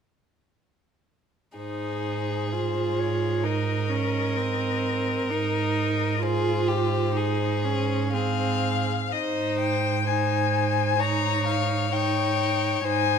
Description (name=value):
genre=classical, slow romantic movement for string quartet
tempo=64 BPM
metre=4/4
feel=rubato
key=Ab major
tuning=A4 = 440 Hz
part: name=warm violin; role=melody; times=1.6-13.2 s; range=C5 to Bb5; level=-29 LUFS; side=left 11 dB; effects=none
part: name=rich violin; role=second line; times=1.6-13.2 s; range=G4 to Db5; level=-29 LUFS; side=left 4 dB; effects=none
part: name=clear viola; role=accompaniment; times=1.6-13.2 s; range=C4 to F4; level=-29 LUFS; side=right 3 dB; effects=none
part: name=rich cello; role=bass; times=1.6-13.2 s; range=Ab2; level=-28 LUFS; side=right 6 dB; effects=none
room=light reverb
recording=close, detailed microphones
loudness=-23 LUFS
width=side -7 dB against mid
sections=1.6-9.1 A section; 9.1-13.2 B section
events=none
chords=1.6 Ab